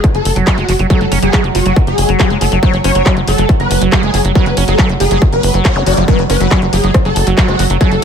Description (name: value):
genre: psychedelic trance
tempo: 139 BPM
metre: 4/4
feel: straight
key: F# harmonic minor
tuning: A4 = 441 Hz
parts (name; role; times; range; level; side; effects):
- swarming rave lead; melody; 0.0-8.0 s; F#4 to D5; -17 LUFS; left 1 dB; chorus, phaser, sidechain pumping, digital delay
- evolving wavetable pad; sustained chords; 0.0-8.0 s; F#3; -20 LUFS; right 4 dB; chorus, built-in reverb, sidechain pumping
- drum and bass drum kit; drums; 0.0-8.0 s; handclaps, hi-hat, rim click; -20 LUFS; left 1 dB; none
- electronic kick drum; drums; 0.0-7.9 s; none; -13 LUFS; equal; distortion
- tight sequencer bass; bass; 0.1-8.0 s; F#1; -15 LUFS; equal; tube saturation
- liquid acid bass; riff; 0.4-8.0 s; E#3 to F#4; -18 LUFS; moving between left 8 dB and right 9 dB; chorus, auto-pan, sidechain pumping, digital delay
- zap; sound effects; 5.8-5.9 s; none; -22 LUFS; left 1 dB; none
room: digital ambience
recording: none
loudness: -9 LUFS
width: side -7 dB against mid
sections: 0.0-8.0 A section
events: none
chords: 0.0 F#5